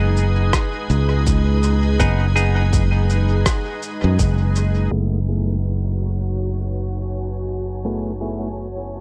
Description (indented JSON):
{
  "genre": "ambient dub",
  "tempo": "82 BPM",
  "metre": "4/4",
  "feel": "swing 60% on 16ths",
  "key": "F# dorian",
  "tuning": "A4 = 440 Hz",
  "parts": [
    { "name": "soft additive organ-like pad", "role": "sustained chords", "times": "0.0-9.0 s", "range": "G#3 to A5", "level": "-29 LUFS", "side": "equal", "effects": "ensemble chorus, built-in reverb" },
    { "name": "fingered electric bass", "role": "bass", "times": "0.0-9.0 s", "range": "F#1 to F#2", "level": "-21 LUFS", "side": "equal", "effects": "tube saturation" },
    { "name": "electronic cabasa and rim click", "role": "drums", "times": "0.2-9.0 s", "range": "none", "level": "-30 LUFS", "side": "equal", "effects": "overdrive, low-pass filter on perc, low-pass filter on snare, dub echo" },
    { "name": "electronic kick drum", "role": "drums", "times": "0.5-4.4 s", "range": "none", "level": "-23 LUFS", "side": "equal", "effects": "none" },
    { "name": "semi-hollow electric guitar", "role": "stabs", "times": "2.0-8.5 s", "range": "A3 to G#4", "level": "-30 LUFS", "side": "equal", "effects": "low-pass filter, dub echo" }
  ],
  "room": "light reverb",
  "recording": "low-pass filter",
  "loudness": "-20 LUFS",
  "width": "mono",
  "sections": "0.0-4.9 A section; 4.9-9.0 B section",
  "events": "filter sweep on clean electric guitar 4.9-9.0; filter sweep 4.9-9.0",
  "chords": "0.0 G#m/F#; 4.9 F#m11"
}